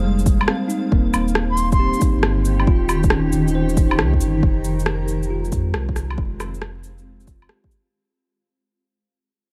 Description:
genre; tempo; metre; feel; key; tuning
future garage; 137 BPM; 4/4; swing 67% on 16ths; F minor; A4 = 441 Hz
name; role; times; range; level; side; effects
bell-like tine electric piano; accompaniment; 0.0-8.1 s; G3 to C5; -26 LUFS; equal; sidechain pumping, low-pass filter, tape echo
granular cloud pad; sustained chords; 0.0-7.9 s; Eb3 to Bb5; -28 LUFS; equal; built-in reverb, sidechain pumping
warm sub bass; bass; 0.0-7.5 s; Eb1 to F2; -25 LUFS; equal; tube saturation, sidechain pumping
electronic shaker, woodblock and rim click; drums; 0.2-7.8 s; none; -26 LUFS; equal; none
electronic kick drum; drums; 0.3-7.7 s; none; -21 LUFS; equal; overdrive
reedy silver concert flute; melody; 1.5-2.0 s; C6; -29 LUFS; equal; tape echo
room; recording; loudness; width
light reverb, digital ambience; vinyl crackle; -19 LUFS; mono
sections
0.0-4.4 A section; 4.4-7.9 B section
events
fade-out 4.4-7.9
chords
0.0 Fm; 0.9 Cm/Eb; 2.7 Eb; 4.4 Fm

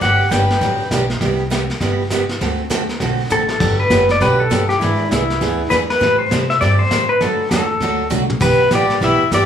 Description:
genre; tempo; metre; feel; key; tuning
country, western swing; 200 BPM; 4/4; swing 63% on 8ths; G major; A4 = 440 Hz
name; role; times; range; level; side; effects
pedal steel guitar; melody; 0.0-0.9, 3.3-9.5 s; E4 to G5; -16 LUFS; left 2 dB; none
clear fiddle; second line; 0.0-0.9, 8.4-9.5 s; B3 to B4; -22 LUFS; right 2 dB; none
picked steel-string acoustic guitar; accompaniment; 0.0-9.4 s; C3 to A4; -21 LUFS; right 4 dB; none
upright bass; bass; 0.0-9.5 s; F#1 to C3; -21 LUFS; equal; none
vintage brush drum kit; drums; 0.0-9.5 s; brushed snare drum, crash cymbal, hi-hat, kick drum, snare drum, toms; -22 LUFS; equal; none
room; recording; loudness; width
moderate large studio reverb, RT60 1.0 s; band playing live in one room, studio ambience; -14 LUFS; side -8 dB against mid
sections
0.0-3.6 A section; 3.6-9.5 B section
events
drum fill 3.3, 8.1-8.4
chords
0.0 Gmaj7; 1.2 Cmaj7; 2.4 D6; 3.6 Gmaj7; 4.8 E7; 6.0 Am7; 7.2 D; 8.4 Em

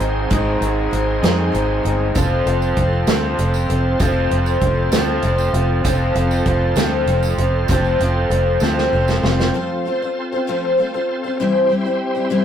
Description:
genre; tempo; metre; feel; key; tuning
folk rock and heartland rock; 65 BPM (dotted quarters); 6/8; straight; unclear; A4 = 440 Hz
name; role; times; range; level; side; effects
picked twelve-string acoustic guitar; accompaniment; 0.0-12.4 s; C3 to C5; -21 LUFS; left 2 dB; none
bright tonewheel organ; sustained chords; 0.0-12.4 s; C4 to C5; -27 LUFS; equal; slow rotary speaker, overdrive, chorus vibrato
raw garage guitar; riff; 0.0-9.5 s; Ab2 to A4; -21 LUFS; right 1 dB; overdrive
fingered electric bass; bass; 0.0-9.5 s; F1 to F2; -19 LUFS; equal; none
natural country drum kit; drums; 0.0-9.5 s; hi-hat, kick drum, snare drum; -21 LUFS; right 1 dB; none
tambourine; percussion; 2.2-9.5 s; none; -37 LUFS; right 6 dB; none
room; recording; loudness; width
moderate stone room reverb, RT60 1.2 s; rough rehearsal-room recording; -16 LUFS; side -9 dB against mid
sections
0.0-9.5 A section; 9.5-12.4 B section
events
drum fill 8.6-9.5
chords
0.0 Ab; 2.2 F; 11.4 C

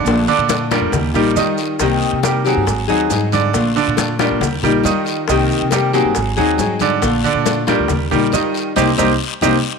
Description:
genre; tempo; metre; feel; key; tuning
latin, Cuban son and guajira; 138 BPM; 4/4; straight; unclear; A4 = 440 Hz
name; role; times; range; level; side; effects
nylon-string guitar; accompaniment; 0.0-9.6 s; C3 to Ab4; -19 LUFS; left 11 dB; none
bright grand piano; arpeggios; 0.0-9.6 s; D3 to Eb5; -18 LUFS; right 12 dB; none
upright bass; bass; 0.0-9.6 s; Ab1 to Eb3; -21 LUFS; right 1 dB; none
bongos; percussion; 0.1-9.5 s; none; -27 LUFS; left 12 dB; none
congas; percussion; 0.1-9.5 s; none; -24 LUFS; left 8 dB; none
guiro; percussion; 0.1-9.5 s; none; -29 LUFS; left 10 dB; none
maracas; percussion; 0.1-9.5 s; none; -29 LUFS; right 16 dB; none
room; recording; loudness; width
moderate echo chamber reverb, RT60 1.6 s, studio ambience; 1960s-style stereo with parts hard left and right; -14 LUFS; side -5 dB against mid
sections
0.0-9.8 A section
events
band accent 8.8-9.8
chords
0.1 Bbmaj7; 0.9 Ebadd9; 1.8 Cm7; 2.7 Ab7; 3.5 Bbmaj7; 4.4 Ebadd9; 5.3 Cm7; 6.2 Ab7; 7.0 Bbmaj7; 7.9 Ebadd9; 8.8 Cm7

